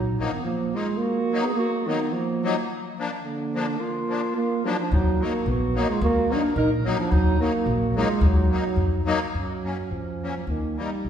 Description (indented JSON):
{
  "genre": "alpine folk, alpine dance band",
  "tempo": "108 BPM",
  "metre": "2/4",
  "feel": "swing 54% on 8ths",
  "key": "Eb harmonic minor",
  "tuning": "A4 = 440 Hz",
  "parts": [
    { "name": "dark euphonium", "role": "melody", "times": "0.0-11.1 s", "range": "D3 to Eb4", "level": "-26 LUFS", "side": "right 2 dB", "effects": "none" },
    { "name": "mellow clarinet", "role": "second line", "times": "0.0-11.1 s", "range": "Bb3 to Bb4", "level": "-30 LUFS", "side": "right 3 dB", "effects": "none" },
    { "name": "upright bass", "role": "bass", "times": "0.0-0.3, 4.9-11.1 s", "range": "Bb1 to F#2", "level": "-24 LUFS", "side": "left 1 dB", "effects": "none" },
    { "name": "musette accordion", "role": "accompaniment", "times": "0.2-10.9 s", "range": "F3 to Eb4", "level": "-29 LUFS", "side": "left 4 dB", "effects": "none" }
  ],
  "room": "wet concert hall reverb, RT60 1.8 s",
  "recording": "recorded in a church or concert hall",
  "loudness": "-22 LUFS",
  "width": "side -8 dB against mid",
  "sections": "0.5-9.3 A section; 9.3-11.1 B section",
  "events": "none",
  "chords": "0.5 Ebm; 2.7 Bb; 4.9 Ebm; 9.3 F#; 10.5 D#",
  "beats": "| 0.46 1.02 | 1.58 2.14 | 2.69 3.24 | 3.80 4.35 | 4.91 5.46 | 6.01 6.56 | 7.11 7.67 | 8.22 8.78 | 9.35 9.92 | 10.48 11.04"
}